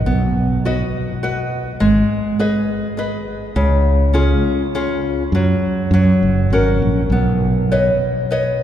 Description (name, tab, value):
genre	italian folk, Italian serenade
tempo	102 BPM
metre	3/4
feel	straight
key	B major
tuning	A4 = 442 Hz
part	fretless electric bass	bass	0.0-7.9 s	F#1 to F#2	-17 LUFS	right 1 dB	none
part	nylon-string guitar	accompaniment	0.1-8.6 s	C#3 to D#5	-18 LUFS	left 1 dB	none
room	wet cathedral reverb, RT60 4.8 s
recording	recorded in a church or concert hall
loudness	-15 LUFS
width	side -10 dB against mid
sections	0.1-8.6 A section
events	none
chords	0.1 B; 1.8 G#m; 3.6 C#; 5.3 N.C.; 5.9 F#; 7.1 Badd9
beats	| 0.07 0.65 1.24 | 1.82 2.40 2.99 | 3.57 4.16 4.74 | 5.34 5.93 6.53 | 7.12 7.72 8.31